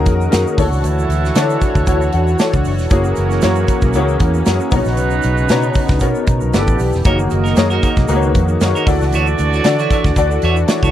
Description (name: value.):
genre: polished 1980s jazz-funk pop.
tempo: 116 BPM.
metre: 4/4.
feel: swing 54% on 16ths.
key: unclear.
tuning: A4 = 440 Hz.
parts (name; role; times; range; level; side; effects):
dark horn section; second line; 0.0-10.9 s; A3 to D#5; -24 LUFS; right 6 dB; none.
warm grand piano; accompaniment; 0.0-10.9 s; A#3 to A#5; -18 LUFS; left 4 dB; ensemble chorus.
warm analog pad; sustained chords; 0.0-10.9 s; C#3 to C#5; -23 LUFS; right 2 dB; chorus.
vintage muted fingered electric bass; bass; 0.0-10.9 s; E1 to D3; -17 LUFS; equal; none.
modern studio drum kit; drums; 0.1-10.9 s; hi-hat, kick drum, snare drum; -17 LUFS; equal; none.
egg shaker; percussion; 0.2-10.9 s; none; -38 LUFS; right 22 dB; none.
clean electric guitar; riff; 7.0-10.9 s; D#4 to C#5; -21 LUFS; right 6 dB; lush chorus.
room: little or no reverb.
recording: dry, close 1970s-style studio recording.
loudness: -13 LUFS.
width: side -11 dB against mid.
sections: 0.0-10.9 A section.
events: grand piano fill 1.9-2.9, 9.7-10.9.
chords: 0.0 F#6; 0.6 Dmaj9; 2.9 F#7; 4.7 Bmaj9; 6.5 G6; 7.1 F#6; 8.9 Dmaj9.